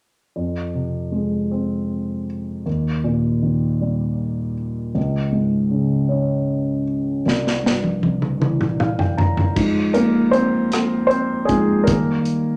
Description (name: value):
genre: six-eight pop ballad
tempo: 52 BPM (dotted quarters)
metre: 6/8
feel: straight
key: F minor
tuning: A4 = 439 Hz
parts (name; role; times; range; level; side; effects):
- dark baby grand piano; accompaniment; 0.4-12.6 s; C2 to Bb5; -21 LUFS; equal; none
- modern studio drum kit; drums; 7.3-12.4 s; crash cymbal, hi-hat, kick drum, rim click, snare drum, toms; -24 LUFS; equal; none
room: wet large studio reverb, RT60 0.8 s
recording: none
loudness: -20 LUFS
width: mono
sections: 0.4-9.6 A section; 9.6-12.6 B section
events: drum fill 7.3-9.6; grand piano fill 8.4-9.6; grand piano solo 9.6-12.6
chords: 0.4 Fm; 2.7 Eb; 5.0 Db5; 7.3 C; 9.6 Fm7; 11.9 Eb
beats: | 0.35 1.51 | 2.67 3.82 | 4.96 6.11 | 7.26 8.41 | 9.57 10.72 | 11.88